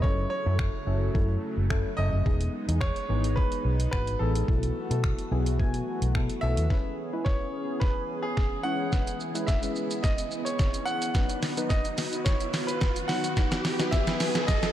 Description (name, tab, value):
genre	dance-pop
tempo	108 BPM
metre	4/4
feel	straight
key	E major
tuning	A4 = 440 Hz
part	clear concert grand piano	melody	0.0-14.7 s	G#4 to F#5	-33 LUFS	right 1 dB	diffuse ambient delay
part	deep mellow chord stab	accompaniment	0.0-14.7 s	D#3 to G#5	-34 LUFS	left 2 dB	chorus, sidechain pumping
part	soft supersaw	sustained chords	0.0-14.7 s	C#3 to B4	-35 LUFS	equal	sidechain pumping
part	vintage muted fingered electric bass	bass	0.0-6.7 s	E1 to B2	-27 LUFS	equal	sidechain pumping
part	detuned 8-bit digital drum machine	drums	0.0-14.7 s	finger snaps, hi-hat, kick drum, shaker, snare drum	-27 LUFS	equal	none
part	riser	sound effects	9.3-14.7 s	none	-36 LUFS	equal	none
room	light reverb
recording	none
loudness	-25 LUFS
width	side -12 dB against mid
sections	0.0-6.7 A section; 6.7-14.7 B section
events	build-up 6.7-14.7; drum fill 6.7-14.7; riser 9.3-14.7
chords	0.0 F#m7; 2.3 Emaj7; 4.5 B7sus4; 6.7 E6; 11.1 B